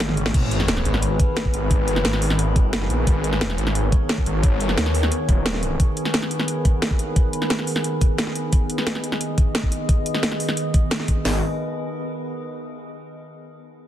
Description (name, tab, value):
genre	dark technical drum and bass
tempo	176 BPM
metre	4/4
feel	straight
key	G# minor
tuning	A4 = 440 Hz
part	metallic inharmonic drone	sustained chords	0.0-11.4 s	D#3 to D#5	-26 LUFS	equal	chorus, built-in reverb, sidechain pumping
part	wide detuned saw bass	bass	0.0-5.8, 11.3-11.4 s	D#1 to D#2	-22 LUFS	equal	chorus
part	drum and bass drum kit	drums	0.0-11.2 s	crash cymbal, hi-hat, snare drum, toms	-24 LUFS	equal	none
part	drum and bass drum kit	drums	0.3-11.3 s	hi-hat, kick drum, snare drum	-18 LUFS	equal	none
part	sub drop	sound effects	0.3-1.7 s	none	-29 LUFS	equal	none
room	light reverb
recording	dense, heavily limited modern master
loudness	-19 LUFS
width	side -12 dB against mid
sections	0.3-11.3 A section; 11.3-12.6 B section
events	drum fill 0.0-0.3; impact 0.3-1.7; filter sweep on synth drone 0.3-11.3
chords	0.3 G#m